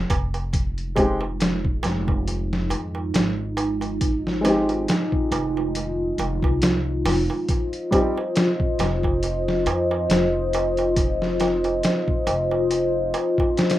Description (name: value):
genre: trip hop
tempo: 69 BPM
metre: 4/4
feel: swing 56% on 16ths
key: F minor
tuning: A4 = 442 Hz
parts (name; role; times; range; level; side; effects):
- dark upright piano; accompaniment; 0.0-8.2 s; G3 to G4; -24 LUFS; equal; harmonic tremolo, tape echo
- upright bass; bass; 0.0-13.1 s; F1 to F2; -28 LUFS; equal; tube saturation
- trip hop sampler-style drum kit; drums; 0.1-13.8 s; hi-hat, kick drum, snare drum; -23 LUFS; equal; none
- darbuka; percussion; 0.1-13.8 s; none; -31 LUFS; right 4 dB; none
- dark analog pad; sustained chords; 1.2-13.8 s; Ab3 to Eb5; -23 LUFS; equal; chorus, phaser
room: light reverb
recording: rough home demo mix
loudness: -20 LUFS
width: side -14 dB against mid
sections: 0.0-13.8 A section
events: none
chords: 0.0 Cm/F; 0.5 Fm7; 7.5 Cm/F